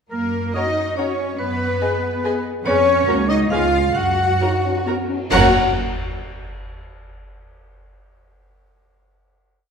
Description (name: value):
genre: cinematic, playful, whimsical film cue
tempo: 129-143 BPM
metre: 3/4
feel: straight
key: F# major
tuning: A4 = 441 Hz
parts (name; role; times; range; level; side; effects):
- rich studio violin section; melody; 0.1-5.6 s; A#4 to F#5; -28 LUFS; left 4 dB; none
- vibraphone with medium hard mallets; melody; 0.1-5.6 s; A#4 to F#5; -26 LUFS; left 2 dB; none
- hollow small flute group; second line; 0.1-5.6 s; A#4 to F#5; -26 LUFS; left 3 dB; none
- warm oboe; second line; 0.1-5.5 s; A#4 to F#5; -26 LUFS; right 2 dB; none
- warm chamber double bass section; bass; 0.1-5.6 s; C#2 to F#2; -24 LUFS; right 2 dB; none
- warm studio cello section; bass; 0.1-5.6 s; A#3 to F#4; -24 LUFS; right 1 dB; none
- mellow French horn section; sustained chords; 0.5-5.5 s; A#3 to G#4; -26 LUFS; left 4 dB; none
- warm studio violin section; second line; 0.6-5.6 s; C#5 to A#5; -29 LUFS; left 1 dB; none
- dark studio viola section; accompaniment; 0.6-5.6 s; C#4 to C#5; -27 LUFS; right 2 dB; none
- cymbal swell, clash cymbals and concert bass drum; percussion; 2.7-6.2 s; none; -27 LUFS; equal; none
room: wet scoring stage reverb, RT60 1.6 s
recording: heard from further back in the room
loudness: -17 LUFS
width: side -6 dB against mid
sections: 0.1-5.3 A section; 5.3-6.7 final chord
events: band accent 5.3-5.8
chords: 0.1 F#; 1.4 G#m7/F#; 2.7 Fdim; 3.1 F#/C#; 3.5 C#7; 4.0 F#5; 5.3 F#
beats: | 0.12 0.55 0.97 | 1.39 1.81 2.24 | 2.65 3.08 3.51 | 3.95 4.41 4.87 | 5.33 5.77